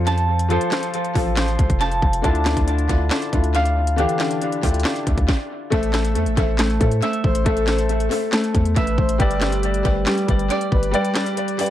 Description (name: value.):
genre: hip hop, trap.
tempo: 138 BPM.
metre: 4/4.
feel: half-time.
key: A minor.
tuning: A4 = 440 Hz.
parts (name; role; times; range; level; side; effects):
felt-muted upright piano; accompaniment; 0.0-11.7 s; D3 to G5; -24 LUFS; left 3 dB; low-pass filter, tape echo.
Celtic harp; arpeggios; 0.0-11.7 s; F3 to A5; -24 LUFS; right 1 dB; low-pass filter, tape echo.
warm 808-style bass; bass; 0.0-10.9 s; F1 to A2; -21 LUFS; equal; none.
trap drum kit; drums; 0.1-11.7 s; handclaps, hi-hat, kick drum, snare drum; -23 LUFS; equal; vintage 12-bit sampler grit, tape echo.
breathy flute-like synth lead; second line; 5.7-11.3 s; A4 to E5; -29 LUFS; left 2 dB; chorus, tremolo, tape echo.
room: light reverb, digital ambience.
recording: echo-heavy mix.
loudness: -17 LUFS.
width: side -12 dB against mid.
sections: 0.0-5.7 A section; 5.7-11.7 B section.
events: stop 5.3-5.7; kick muted 10.9-11.7.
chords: 0.0 F; 2.2 Dmadd9; 5.7 Am; 9.2 G.